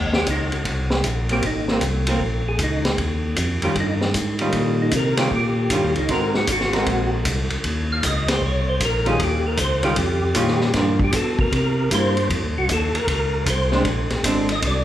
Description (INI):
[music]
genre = soul jazz organ trio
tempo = 155 BPM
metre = 4/4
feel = swing 65% on 8ths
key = Eb mixolydian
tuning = A4 = 438 Hz
[part]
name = tonewheel organ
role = bass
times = 0.0-14.8 s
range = Ab1 to C3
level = -23 LUFS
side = equal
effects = overdrive, chorus vibrato, stopped rotary speaker
[part]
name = vintage drum kit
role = drums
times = 0.1-14.7 s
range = hi-hat, kick drum, ride cymbal, snare drum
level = -23 LUFS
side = equal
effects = none
[part]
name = percussive tonewheel organ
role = melody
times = 0.2-14.8 s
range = Eb4 to F5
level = -25 LUFS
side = equal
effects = slow rotary speaker, chorus vibrato
[part]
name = archtop guitar, miked and amplified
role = accompaniment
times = 1.3-14.5 s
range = Eb3 to Bb4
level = -24 LUFS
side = equal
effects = none
[sound]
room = wet recital hall reverb, RT60 1.5 s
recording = recorded in a church or concert hall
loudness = -18 LUFS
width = side -12 dB against mid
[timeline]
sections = 0.0-14.8 A section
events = tonewheel organ solo 0.0-14.8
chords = 0.0 Eb5; 1.4 Ab9; 3.0 Eb9; 6.1 Ab9; 7.6 Eb9; 10.7 Gm7; 11.5 C7; 12.3 F7(no3); 13.9 Bb9